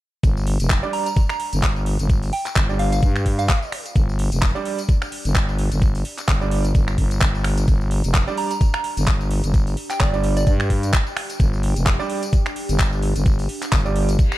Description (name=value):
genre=bass house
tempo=129 BPM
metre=4/4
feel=swing 56% on 16ths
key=G minor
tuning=A4 = 441 Hz
part: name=growling FM bass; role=bass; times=0.2-14.2 s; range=F1 to G2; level=-21 LUFS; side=equal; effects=overdrive, sidechain pumping
part: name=electronic kick drum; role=drums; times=0.2-14.3 s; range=none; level=-18 LUFS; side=equal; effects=studio reverb
part: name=garage drum kit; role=drums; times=0.2-14.4 s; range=finger snaps, handclaps, hi-hat, tambourine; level=-27 LUFS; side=equal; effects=studio reverb
part: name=warbly tape-like pad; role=texture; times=0.2-14.4 s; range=D4 to Bb5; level=-36 LUFS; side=left 1 dB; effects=chorus, built-in reverb, sidechain pumping
part: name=clear baby grand piano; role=stabs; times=0.8-14.1 s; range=G3 to D5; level=-29 LUFS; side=right 6 dB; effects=sidechain pumping, low-pass filter, tape echo
part: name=soft synth bell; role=melody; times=0.9-3.7, 8.4-10.6 s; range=D5 to Bb5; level=-28 LUFS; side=right 2 dB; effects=chorus, tape echo
part: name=reverse cymbal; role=sound effects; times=14.3-14.4 s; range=none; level=-26 LUFS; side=left 7 dB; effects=none
room=digital ambience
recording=dark, warm production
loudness=-18 LUFS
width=side -16 dB against mid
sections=0.2-14.4 A section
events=fade-in on ambient pad 0.2-14.4; reverse cymbal 14.3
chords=0.2 G5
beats=| 0.23 0.70 1.17 1.63 | 2.10 2.56 3.03 3.49 | 3.96 4.42 4.89 5.35 | 5.82 6.28 6.75 7.21 | 7.68 8.14 8.61 9.07 | 9.54 10.00 10.47 10.93 | 11.40 11.86 12.33 12.79 | 13.26 13.72 14.19